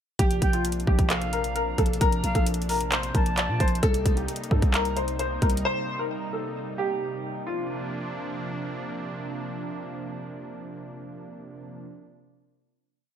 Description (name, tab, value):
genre	hip hop, trap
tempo	132 BPM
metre	4/4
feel	half-time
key	Bb major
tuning	A4 = 439 Hz
part	warm baby grand piano	melody	0.2-8.8 s	F4 to D5	-29 LUFS	left 2 dB	lush chorus, low-pass filter, ping-pong delay
part	warm analog pad	sustained chords	0.2-11.9 s	C3 to Eb4	-34 LUFS	right 1 dB	chorus
part	growling 808-style bass	bass	0.2-5.6 s	Bb1 to Bb2	-28 LUFS	equal	none
part	trap drum kit	drums	0.2-5.6 s	handclaps, hi-hat, kick drum	-24 LUFS	equal	none
part	jazz flute	second line	0.4-3.8 s	F5 to A5	-34 LUFS	equal	ping-pong delay
room	light reverb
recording	bright 1980s-style digital production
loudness	-24 LUFS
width	side -9 dB against mid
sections	0.2-7.5 hook; 7.5-11.1 final chord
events	none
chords	0.2 Bbadd9; 3.8 Cm7; 7.5 Bbadd9